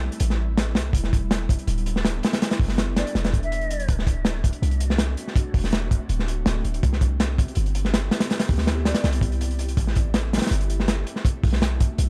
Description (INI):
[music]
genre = drum and bass, jungle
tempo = 163 BPM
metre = 4/4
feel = straight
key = E minor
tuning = A4 = 440 Hz
[part]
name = ethereal airy pad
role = sustained chords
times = 0.0-12.1 s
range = G3 to G4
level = -37 LUFS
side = equal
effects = ensemble chorus, built-in reverb
[part]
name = warm 808-style bass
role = bass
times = 0.0-12.1 s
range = D1 to D2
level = -26 LUFS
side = equal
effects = none
[part]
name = crunchy breakbeat drum kit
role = drums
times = 0.1-12.1 s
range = hi-hat, kick drum, snare drum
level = -25 LUFS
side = equal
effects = none
[part]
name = mellow jazz flute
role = melody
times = 3.0-3.9, 8.9-9.1 s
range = D5 to E5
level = -37 LUFS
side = equal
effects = vintage 12-bit sampler grit, dub echo
[sound]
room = studio reverb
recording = dark, warm production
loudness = -23 LUFS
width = mono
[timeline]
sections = 0.0-12.1 A section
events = none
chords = 0.0 Am7; 0.9 Em7; 3.9 D7; 6.8 Cmaj7; 9.8 Am7; 11.2 Bm7